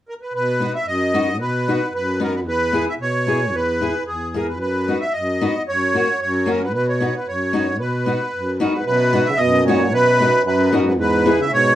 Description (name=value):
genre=alpine folk, alpine dance band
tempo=113 BPM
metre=2/4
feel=straight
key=B major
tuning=A4 = 440 Hz
part: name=accordion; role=melody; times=0.1-11.8 s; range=G#4 to E5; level=-20 LUFS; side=right 1 dB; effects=light tremolo tuning
part: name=dark baritone saxophone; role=bass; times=0.3-11.8 s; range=E2 to B2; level=-22 LUFS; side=equal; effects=none
part: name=fingerpicked steel-string acoustic guitar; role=accompaniment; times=0.6-11.4 s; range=A#3 to G#4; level=-22 LUFS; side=left 3 dB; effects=none
part: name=mellow euphonium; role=second line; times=8.6-11.8 s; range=F#2 to C#3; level=-22 LUFS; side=right 2 dB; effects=none
room=wet studio reverb, RT60 0.5 s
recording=band playing live in one room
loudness=-17 LUFS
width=side -12 dB against mid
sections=0.3-8.9 A section; 8.9-11.8 A section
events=none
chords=0.3 B; 2.5 E; 4.6 B/F#; 5.7 F#; 6.7 B; 11.0 E